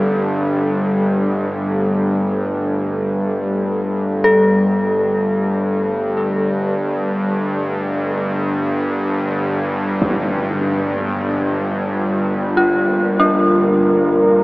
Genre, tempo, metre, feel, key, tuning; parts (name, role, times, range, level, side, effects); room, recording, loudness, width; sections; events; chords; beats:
dark ambient drone; free time; G minor; A4 = 438 Hz
deep dark ambient pad; sustained chords; 0.0-14.4 s; G3 to Bb4; -19 LUFS; equal; chorus, built-in reverb
dark detuned synth bell; arpeggios; 0.0-14.4 s; C4 to A4; -19 LUFS; equal; chorus, analog delay
bowed-like drone; drone; 0.0-14.4 s; G1 to G2; -20 LUFS; equal; built-in reverb
impact; percussion; 10.0-10.3 s; -27 LUFS; equal
wet huge ambient reverb, RT60 8.5 s; dreamy mix soaked in reverb, small speaker sound; -15 LUFS; side -21 dB against mid
0.0-14.4 A section
0.0 G5; 10.0 Gm9
free time